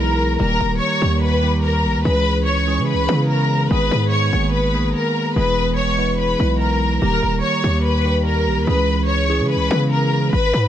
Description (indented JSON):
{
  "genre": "hip hop, drill",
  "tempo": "145 BPM",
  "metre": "4/4",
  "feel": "half-time",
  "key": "unclear",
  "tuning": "A4 = 440 Hz",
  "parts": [
    { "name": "warm studio violin section", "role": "melody", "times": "0.0-10.7 s", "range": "A#4 to C#6", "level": "-20 LUFS", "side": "left 2 dB", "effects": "low-pass filter, tape echo" },
    { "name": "tine electric piano", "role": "accompaniment", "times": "0.0-10.3 s", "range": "D#3 to B4", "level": "-21 LUFS", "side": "right 2 dB", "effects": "phaser, low-pass filter" },
    { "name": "hard-hitting 808-style bass", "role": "bass", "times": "0.0-10.7 s", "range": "D#1 to C#3", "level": "-20 LUFS", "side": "equal", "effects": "none" }
  ],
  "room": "small room ambience",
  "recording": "none",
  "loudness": "-16 LUFS",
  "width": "side -10 dB against mid",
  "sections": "0.0-10.3 A section",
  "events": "none",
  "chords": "0.4 D#; 2.1 C#m; 3.7 G#madd9; 5.4 E; 7.0 D#; 8.7 C#m",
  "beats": "| 0.40 0.81 1.23 1.64 | 2.05 2.47 2.88 3.29 | 3.71 4.12 4.54 4.95 | 5.36 5.78 6.19 6.60 | 7.02 7.43 7.84 8.26 | 8.67 9.09 9.50 9.91 | 10.33"
}